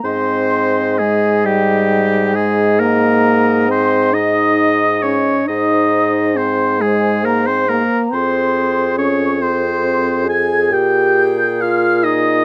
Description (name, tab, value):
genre	classical, slow romantic movement for wind quintet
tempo	45 BPM (dotted quarters)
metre	6/8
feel	rubato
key	Ab major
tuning	A4 = 440 Hz
part	mellow hollow silver concert flute	melody	0.0-12.4 s	G5 to Ab6	-24 LUFS	equal	none
part	clear oboe	second line	0.0-12.4 s	G4 to Ab5	-22 LUFS	equal	none
part	warm French horn	accompaniment	0.0-12.4 s	G3 to Ab4	-20 LUFS	equal	none
part	mellow bassoon	bass	0.0-12.4 s	F2 to Bb2	-21 LUFS	equal	none
part	clear clarinet	accompaniment	0.1-12.4 s	Ab4 to Eb5	-27 LUFS	equal	none
room	light reverb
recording	close, detailed microphones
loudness	-15 LUFS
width	mono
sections	0.1-12.4 A section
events	none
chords	0.1 Ab; 8.1 Fm; 10.7 Fm11/Bb